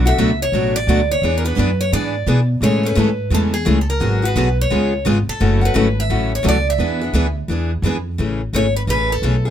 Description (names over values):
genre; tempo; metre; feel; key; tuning
acoustic string swing (jazz manouche); 172 BPM; 4/4; swing 62% on 8ths; A major; A4 = 440 Hz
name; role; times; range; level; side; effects
picked steel-string acoustic guitar; accompaniment; 0.0-9.5 s; B2 to G#4; -21 LUFS; left 5 dB; none
picked steel-string acoustic guitar; accompaniment; 0.0-8.0 s; B2 to B4; -22 LUFS; right 4 dB; none
upright bass; bass; 0.0-9.5 s; F#1 to B2; -18 LUFS; equal; none
picked steel-string acoustic guitar; melody; 0.1-9.4 s; G#4 to E5; -21 LUFS; right 1 dB; none
room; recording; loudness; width
little or no reverb; close, detailed microphones; -15 LUFS; side -10 dB against mid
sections
0.0-8.2 A section; 8.2-9.5 B section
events
none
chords
0.0 Bm11; 1.2 E9; 2.6 Amaj9; 4.0 G#m7b5; 4.7 C#7; 5.4 F#m7; 6.8 E7b9; 8.2 Amaj9